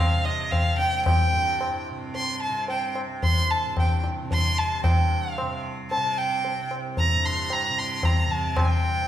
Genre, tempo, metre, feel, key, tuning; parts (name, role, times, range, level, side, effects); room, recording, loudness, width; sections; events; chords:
indian classical, Hindustani; 112 BPM; 7/4; straight; C raga kafi; A4 = 438 Hz
clear violin; melody; 0.0-9.1 s; Eb5 to C6; -25 LUFS; right 1 dB
tanpura; drone; 0.0-9.1 s; C2 to C3; -34 LUFS; right 2 dB
tabla; percussion; 0.3-8.8 s; -24 LUFS; left 1 dB
moderate scoring stage reverb, RT60 1.8 s; recorded in a church or concert hall; -22 LUFS; side -11 dB against mid
0.0-4.8 A section; 4.8-9.1 B section
speeding up 0.0-9.1